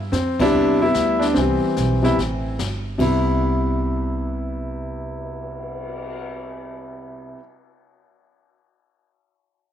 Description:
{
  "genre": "jazz piano trio",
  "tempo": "147 BPM",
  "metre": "4/4",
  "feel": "swing 67% on 8ths",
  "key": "C major",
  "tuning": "A4 = 440 Hz",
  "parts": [
    { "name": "upright bass", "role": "bass", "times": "0.0-7.3 s", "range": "G1 to G2", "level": "-26 LUFS", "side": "right 1 dB", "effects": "none" },
    { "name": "warm grand piano", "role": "melody", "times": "0.1-7.4 s", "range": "C3 to E4", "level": "-21 LUFS", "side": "left 1 dB", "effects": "none" },
    { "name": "jazz brush drum kit", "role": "drums", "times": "0.1-6.2 s", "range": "brushed snare drum, crash cymbal, cymbal swell, hi-hat, kick drum, snare drum", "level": "-33 LUFS", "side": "left 6 dB", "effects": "none" }
  ],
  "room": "light reverb, small room ambience",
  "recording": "1960s-style stereo",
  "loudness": "-19 LUFS",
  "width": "side -10 dB against mid",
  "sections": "0.0-3.0 A section; 3.0-6.3 B section",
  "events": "band accent 0.3",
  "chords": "0.0 Cmaj7"
}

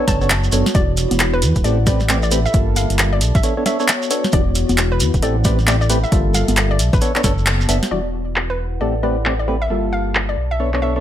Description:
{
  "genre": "UK garage, two-step garage",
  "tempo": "134 BPM",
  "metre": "4/4",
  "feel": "swing 62% on 16ths",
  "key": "E minor",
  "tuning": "A4 = 440 Hz",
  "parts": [
    { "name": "percussive organ stab", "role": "stabs", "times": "0.0-11.0 s", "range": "E3 to E5", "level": "-22 LUFS", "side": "equal", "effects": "wide subtle chorus, ping-pong delay" },
    { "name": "warbly tape-like pad", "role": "texture", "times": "0.0-11.0 s", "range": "B3 to B5", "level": "-27 LUFS", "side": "left 2 dB", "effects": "chorus, built-in reverb, sidechain pumping" },
    { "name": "hollow square pluck", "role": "melody", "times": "0.1-11.0 s", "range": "A4 to A5", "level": "-26 LUFS", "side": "left 2 dB", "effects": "chorus, tape echo" },
    { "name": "dark detuned saw bass", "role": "bass", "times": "0.1-11.0 s", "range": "D1 to E2", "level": "-19 LUFS", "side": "equal", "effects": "none" },
    { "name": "electronic kick drum", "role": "drums", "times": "0.1-7.4 s", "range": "none", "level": "-18 LUFS", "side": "equal", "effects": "overdrive" },
    { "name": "punchy analog drum machine", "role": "drums", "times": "0.1-10.8 s", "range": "congas, handclaps, hi-hat, snare drum", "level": "-20 LUFS", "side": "equal", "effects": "overdrive, low-pass filter on hats, low-pass filter on snare, low-pass filter on perc" },
    { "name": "shekere", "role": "percussion", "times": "0.1-7.9 s", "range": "none", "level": "-27 LUFS", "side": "right 5 dB", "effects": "none" }
  ],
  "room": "light reverb, digital ambience",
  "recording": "none",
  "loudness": "-15 LUFS",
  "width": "side -11 dB against mid",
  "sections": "0.0-7.9 A section; 7.9-11.0 B section",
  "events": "filter sweep on synth stab 0.0-7.9; band accent 7.5",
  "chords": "0.0 Bm9; 0.7 Em9; 1.6 Am9; 2.5 Gm9; 3.2 Bm9; 4.3 Em9; 5.2 Am9; 6.1 Gm9; 6.8 Bm9; 7.9 Em9; 8.8 Am9; 9.7 Gm9; 10.4 Bm9"
}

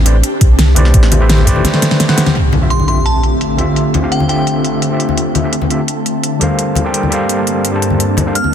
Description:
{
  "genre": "liquid drum and bass",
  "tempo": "170 BPM",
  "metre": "4/4",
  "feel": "straight",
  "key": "D minor",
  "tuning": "A4 = 441 Hz",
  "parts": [
    { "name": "overdriven tine electric piano", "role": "accompaniment", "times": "0.0-8.5 s", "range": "D3 to A5", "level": "-18 LUFS", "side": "equal", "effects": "medium tremolo, dub echo" },
    { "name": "ethereal airy pad", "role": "sustained chords", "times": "0.0-8.5 s", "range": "G2 to A5", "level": "-18 LUFS", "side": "equal", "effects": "ensemble chorus, built-in reverb, vintage 12-bit sampler grit, sidechain pumping" },
    { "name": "warm sub bass", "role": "bass", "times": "0.0-1.6 s", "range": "A1 to C2", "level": "-10 LUFS", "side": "equal", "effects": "none" },
    { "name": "pop drum kit", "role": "drums", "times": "0.1-8.4 s", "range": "hi-hat, snare drum", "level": "-16 LUFS", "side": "equal", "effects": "low-pass filter on hats, low-pass filter on snare" },
    { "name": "electronic kick drum", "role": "drums", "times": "0.4-1.5 s", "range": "none", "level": "-10 LUFS", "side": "equal", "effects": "none" },
    { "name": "congas", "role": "percussion", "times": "0.8-8.5 s", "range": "none", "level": "-18 LUFS", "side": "left 4 dB", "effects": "none" },
    { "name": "impact", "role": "sound effects", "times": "2.4-3.8 s", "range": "none", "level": "-16 LUFS", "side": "equal", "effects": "none" },
    { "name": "glassy synth bell", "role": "melody", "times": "2.7-4.8, 8.4-8.5 s", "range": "G5 to F6", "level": "-22 LUFS", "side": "equal", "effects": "chorus, dub echo" }
  ],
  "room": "digital ambience",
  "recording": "dense, heavily limited modern master",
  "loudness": "-10 LUFS",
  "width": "side -9 dB against mid",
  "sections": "0.0-2.4 A section; 2.4-8.5 B section",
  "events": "drop 0.0-2.4; break 1.6-2.4; drum fill 1.6-2.4; band accent 2.3; impact 2.4-3.8; filter sweep on drum 2.4-8.5",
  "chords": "0.0 Am11; 2.4 Dm11; 6.4 Gm11"
}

